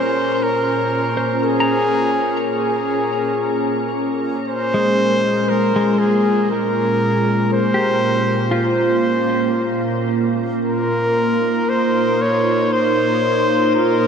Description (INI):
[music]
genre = ambient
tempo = 59 BPM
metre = 3/4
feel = straight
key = Bb minor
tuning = A4 = 438 Hz
[part]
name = warm flugelhorn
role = melody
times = 0.0-14.1 s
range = Ab4 to Db5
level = -19 LUFS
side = left 1 dB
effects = tape echo
[part]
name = soft additive organ-like pad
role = sustained chords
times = 0.0-14.1 s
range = Bb2 to G5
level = -20 LUFS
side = right 2 dB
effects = ensemble chorus, built-in reverb
[part]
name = semi-hollow electric guitar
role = arpeggios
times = 0.0-11.2 s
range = Ab3 to C6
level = -22 LUFS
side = left 1 dB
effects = tape echo
[part]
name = analog drone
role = drone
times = 3.3-14.1 s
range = Bb3 to F4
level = -28 LUFS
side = equal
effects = chorus
[part]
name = glass harmonica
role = texture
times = 10.6-14.1 s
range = Bb4 to C6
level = -26 LUFS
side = left 2 dB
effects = none
[sound]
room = wet huge ambient reverb, RT60 7.5 s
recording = none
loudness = -15 LUFS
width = side -7 dB against mid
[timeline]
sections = 0.0-14.1 A section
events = fade-in on synth drone 0.0-14.1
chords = 0.0 Bbm9; 10.7 Ebsus2/Bb